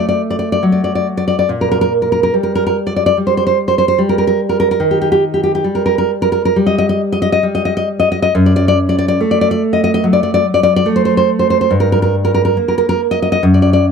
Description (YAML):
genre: romantic piece for solo classical guitar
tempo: 71 BPM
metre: 4/4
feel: rubato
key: G minor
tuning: A4 = 444 Hz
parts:
  - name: nylon-string guitar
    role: solo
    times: 0.0-13.9 s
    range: F#2 to Eb5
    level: -11 LUFS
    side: equal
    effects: none
room: small room reverb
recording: dry, close 1970s-style studio recording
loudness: -11 LUFS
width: side -6 dB against mid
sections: 0.0-13.9 A section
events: none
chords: 0.0 D; 1.5 Gm/Bb; 4.8 Eb; 8.3 F#dim; 11.7 Gm